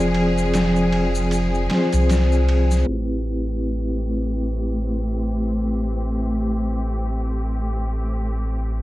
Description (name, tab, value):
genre	trip hop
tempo	77 BPM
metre	4/4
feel	swing 57% on 16ths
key	A minor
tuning	A4 = 440 Hz
part	vibraphone with medium hard mallets	accompaniment	0.0-8.8 s	C4 to D5	-26 LUFS	left 1 dB	tremolo, vintage 12-bit sampler grit, tape echo
part	clear studio string section	sustained chords	0.0-8.8 s	F3 to Ab4	-25 LUFS	equal	low-pass filter
part	soft dub sub bass	bass	0.0-8.8 s	F1 to C2	-22 LUFS	equal	none
part	trip hop sampler-style drum kit	drums	0.1-2.9 s	ride cymbal, snare drum	-27 LUFS	right 1 dB	none
part	maracas	percussion	0.4-2.8 s	none	-38 LUFS	left 4 dB	none
room	light reverb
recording	vinyl crackle, low-pass filter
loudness	-19 LUFS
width	side -16 dB against mid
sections	0.0-2.9 A section; 2.9-8.8 B section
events	kick drops out 1.3-2.9; filter sweep on string section 2.9-8.8; filter sweep 2.9-8.8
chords	0.0 Fm; 2.9 Am7